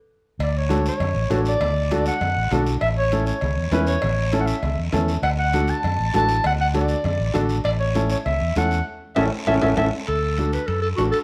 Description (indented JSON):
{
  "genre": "latin, cumbia",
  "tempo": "198 BPM",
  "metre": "4/4",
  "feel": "straight",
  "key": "D major",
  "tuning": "A4 = 440 Hz",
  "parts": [
    { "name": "warm clarinet", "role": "second line", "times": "0.4-11.2 s", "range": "F#4 to A5", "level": "-26 LUFS", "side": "equal", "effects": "none" },
    { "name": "fingered electric bass", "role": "bass", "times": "0.4-11.1 s", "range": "A1 to F#2", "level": "-26 LUFS", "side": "equal", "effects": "none" },
    { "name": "congas", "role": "percussion", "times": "0.4-11.1 s", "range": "none", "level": "-33 LUFS", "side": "equal", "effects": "none" },
    { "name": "cowbell and timbales", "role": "percussion", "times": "0.4-11.2 s", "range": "none", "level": "-34 LUFS", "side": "equal", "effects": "none" },
    { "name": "guiro", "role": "percussion", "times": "0.4-11.2 s", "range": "none", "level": "-40 LUFS", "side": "equal", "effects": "none" },
    { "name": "warm upright piano", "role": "accompaniment", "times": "0.7-11.2 s", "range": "C#4 to B4", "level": "-28 LUFS", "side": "equal", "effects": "none" }
  ],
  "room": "moderate large studio reverb, RT60 1.2 s",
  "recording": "none",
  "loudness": "-22 LUFS",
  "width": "mono",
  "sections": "0.4-10.1 A section; 10.1-11.2 B section",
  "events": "stop 0.0-0.4; clarinet solo 0.4-10.1, 10.1-11.2; band accent 8.9-10.1; drum fill 9.6-10.1",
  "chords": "0.4 D; 2.8 A; 5.2 D; 7.7 A; 10.1 D"
}